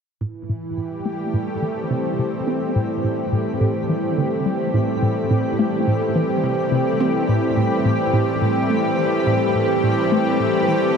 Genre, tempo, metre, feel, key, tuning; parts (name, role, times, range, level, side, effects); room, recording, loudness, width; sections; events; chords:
ambient; 106 BPM; 4/4; straight; A minor; A4 = 440 Hz
lush unison pad; sustained chords; 0.2-11.0 s; E3 to G4; -20 LUFS; equal; chorus
hollow square pluck; riff; 0.2-11.0 s; A2 to C4; -22 LUFS; equal; chorus, analog delay
twinkling granular texture; texture; 0.9-11.0 s; B4; -35 LUFS; left 3 dB; built-in reverb
wet plate reverb, RT60 3.5 s; -18 LUFS; side -6 dB against mid
0.2-11.0 A section
fade-in on synth texture 0.2-11.0; filter sweep on synth arpeggio sound 0.2-11.0
0.2 Am7